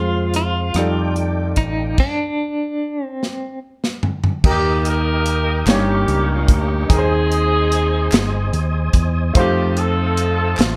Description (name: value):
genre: slow gospel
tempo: 49 BPM (dotted quarters)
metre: 6/8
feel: straight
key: Eb major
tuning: A4 = 443 Hz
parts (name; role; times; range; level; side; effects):
- clean electric guitar; melody; 0.0-3.6 s; D4 to F4; -25 LUFS; equal; tremolo
- bright baby grand piano; accompaniment; 0.0-10.8 s; G2 to D5; -26 LUFS; equal; none
- mellow French horn section; sustained chords; 0.0-2.0 s; Eb3 to D5; -33 LUFS; equal; none
- tonewheel organ; sustained chords; 0.0-10.8 s; Ab3 to Eb6; -31 LUFS; equal; slow rotary speaker, chorus vibrato
- fingered electric bass; bass; 0.0-10.8 s; G1 to F2; -22 LUFS; equal; none
- crisp fusion drum kit; drums; 0.3-10.8 s; crash cymbal, hi-hat, kick drum, rim click, snare drum, toms; -20 LUFS; equal; none
- clear saxophone section; melody; 4.5-10.8 s; A3 to Bb4; -23 LUFS; equal; slapback echo
- group handclap; percussion; 5.7-10.8 s; none; -34 LUFS; equal; none
room: light reverb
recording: dark, warm production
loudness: -18 LUFS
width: mono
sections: 0.0-4.4 A section; 4.4-10.8 B section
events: stop 2.0-4.4; drum fill 3.2-4.4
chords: 0.0 Fm; 0.8 F13; 2.0 N.C.; 4.4 Eb; 5.7 Eb7/G; 6.9 Ab/Eb; 9.3 F7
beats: 0.76 | 1.98 3.21 | 4.43 5.66 | 6.89 8.11 | 9.34 10.57